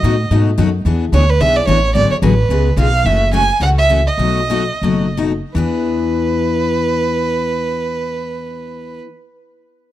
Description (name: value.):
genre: acoustic string swing (jazz manouche).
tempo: 153-220 BPM.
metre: 4/4.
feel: swing 56% on 8ths.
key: E mixolydian.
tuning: A4 = 440 Hz.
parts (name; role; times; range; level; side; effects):
rich violin; melody; 0.0-9.0 s; B4 to G#5; -18 LUFS; right 4 dB; none.
picked steel-string acoustic guitar; accompaniment; 0.0-9.1 s; B2 to G#4; -19 LUFS; left 6 dB; none.
upright bass; bass; 0.0-9.0 s; F#1 to A2; -17 LUFS; equal; none.
room: studio reverb.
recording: dry, close 1970s-style studio recording.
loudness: -13 LUFS.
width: side -13 dB against mid.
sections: 0.0-3.0 A section; 3.0-5.5 B section; 5.5-8.7 C section.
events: slowing down 3.0-5.5.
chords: 0.0 B7; 0.9 E7; 2.0 G#m7b5; 2.5 C#7; 3.0 F#m7; 4.2 B7; 5.5 E7.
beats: 0.04 0.31 0.59 | 0.86 1.13 1.41 1.68 | 1.95 2.23 2.50 2.77 | 3.04 3.32 3.60 3.89 | 4.18 4.50 4.82 5.17 | 5.55 5.94 6.33 6.72 | 7.12 7.51 7.90 8.29.